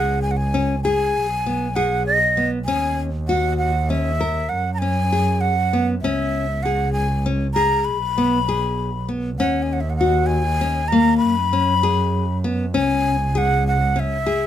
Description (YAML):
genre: contemporary instrumental, chamber music in an uneven meter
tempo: 197 BPM (eighths)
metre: 11/8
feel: straight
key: G# minor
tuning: A4 = 436 Hz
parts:
  - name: breathy jazz flute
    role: melody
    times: 0.0-14.5 s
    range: D#5 to B5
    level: -21 LUFS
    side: equal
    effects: none
  - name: nylon-string guitar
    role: arpeggios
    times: 0.0-14.5 s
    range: A#3 to A#4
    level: -22 LUFS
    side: left 3 dB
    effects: none
  - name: warm double bass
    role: bass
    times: 0.0-14.5 s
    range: B1 to F#2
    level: -22 LUFS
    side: right 1 dB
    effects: none
room: little or no reverb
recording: close, detailed microphones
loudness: -18 LUFS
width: side -10 dB against mid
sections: 0.0-14.5 A section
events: none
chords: 0.0 C#5; 1.1 G#m/B; 2.7 D#m7; 4.5 F#sus2; 6.0 C#m; 7.9 G#m/B; 9.4 D#m7; 11.2 F#sus2; 12.7 C#m